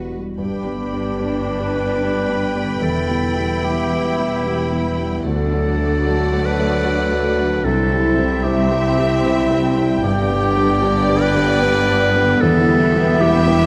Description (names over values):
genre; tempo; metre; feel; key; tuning
cinematic, emotional film score for orchestra; 75 BPM; 3/4; rubato; G major; A4 = 440 Hz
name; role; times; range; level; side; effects
warm symphonic violin section; second line; 0.0-13.7 s; F#4 to G5; -30 LUFS; equal; none
dark grand piano; accompaniment; 0.0-13.7 s; C2 to C5; -25 LUFS; equal; none
concert harp; arpeggios; 0.0-13.7 s; E2 to C6; -27 LUFS; equal; none
rich symphonic double bass section; bass; 0.0-13.7 s; E1 to D2; -27 LUFS; equal; none
warm symphonic violin section; melody; 0.4-13.7 s; F#5 to B5; -33 LUFS; equal; none
clear clarinet; second line; 0.4-13.7 s; G4 to B4; -24 LUFS; equal; none
warm studio viola section; accompaniment; 0.4-13.7 s; A3 to E4; -31 LUFS; equal; none
mellow French horn section; sustained chords; 0.4-13.7 s; A3 to B4; -26 LUFS; equal; none
rich symphonic cello section; bass; 0.4-13.7 s; C2 to G2; -28 LUFS; equal; none
room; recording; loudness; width
moderate recital hall reverb, RT60 1.4 s; none; -18 LUFS; mono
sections
0.4-13.7 A section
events
none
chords
0.4 G; 2.8 Em; 5.2 D; 7.7 C; 10.0 G; 12.4 Em